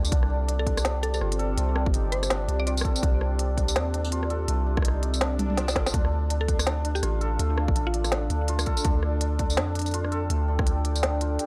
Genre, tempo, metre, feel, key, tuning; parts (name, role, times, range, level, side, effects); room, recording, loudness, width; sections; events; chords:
half-time drum and bass; 165 BPM; 4/4; swing 59% on 16ths, half-time; D minor; A4 = 441 Hz
dark analog pad; sustained chords; 0.0-11.5 s; C4 to G5; -36 LUFS; equal; chorus, vintage 12-bit sampler grit, sidechain pumping
santur; arpeggios; 0.0-11.5 s; A3 to D5; -35 LUFS; equal; vintage 12-bit sampler grit, analog delay
long sustained 808-style bass; bass; 0.0-11.4 s; G1 to F2; -29 LUFS; equal
organic electronic drum kit; drums; 0.0-11.5 s; hi-hat, rim click, snare drum, tambourine, toms; -31 LUFS; equal; studio reverb
electronic kick drum; drums; 0.1-10.7 s; -28 LUFS; equal; studio reverb
mallet-like synth pluck; melody; 0.6-2.7, 6.4-8.4 s; F4 to D5; -37 LUFS; equal; chorus, analog delay
swell; sound effects; 5.4-5.9 s; -41 LUFS; equal
little or no reverb; dry, gritty hardware recording; -26 LUFS; mono
0.0-11.5 A section
swell 5.4-5.9; drum fill 5.4-5.9
0.1 Cm; 5.9 Dm